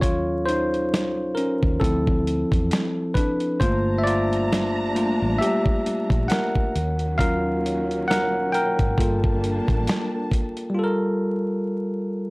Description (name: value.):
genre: lo-fi hip hop.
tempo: 67 BPM.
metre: 4/4.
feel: swing 57% on 16ths.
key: unclear.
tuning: A4 = 440 Hz.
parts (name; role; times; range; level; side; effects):
bell-like tine electric piano; accompaniment; 0.0-12.3 s; F3 to G5; -22 LUFS; equal; none.
vintage muted fingered electric bass; bass; 0.0-9.9 s; G1 to E2; -27 LUFS; equal; tube saturation.
dusty soul sampler-style drum kit; drums; 0.0-10.8 s; hi-hat, kick drum, snare drum; -23 LUFS; equal; none.
dark studio string section; sustained chords; 3.6-10.8 s; Eb3 to Bb5; -31 LUFS; equal; none.
room: light reverb.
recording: dry, gritty hardware recording, vinyl crackle.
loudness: -20 LUFS.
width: side -25 dB against mid.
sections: 0.0-10.8 A section; 10.8-12.3 B section.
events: tine electric piano solo 0.0-10.8.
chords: 0.0 Ebm9; 1.8 Dm9; 3.6 Gm9; 6.7 Ebm9; 9.0 Gm9.